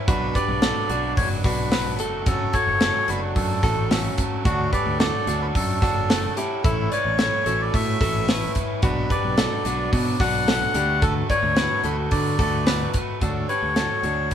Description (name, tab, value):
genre	jangly indie pop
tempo	110 BPM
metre	4/4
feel	straight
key	D major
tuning	A4 = 440 Hz
part	raw garage guitar	accompaniment	0.0-14.3 s	F#2 to B4	-30 LUFS	right 4 dB	overdrive
part	direct-recorded clean electric guitar	arpeggios	0.0-14.3 s	C#4 to D5	-28 LUFS	left 1 dB	warbly pitch drift
part	melodica	melody	0.1-14.3 s	E4 to F#5	-25 LUFS	left 1 dB	none
part	modern bright picked electric bass	bass	0.1-14.3 s	F#1 to D3	-28 LUFS	equal	none
part	modern studio drum kit	drums	0.1-14.3 s	hi-hat, kick drum, snare drum	-24 LUFS	equal	none
room	light reverb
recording	band playing live in one room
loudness	-20 LUFS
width	side -9 dB against mid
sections	0.0-13.2 A section; 13.2-14.3 B section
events	none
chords	0.1 Bm; 2.0 F#m; 4.5 Dmaj7; 6.6 Aadd9; 8.8 Bm; 10.7 D6; 13.2 Dmaj7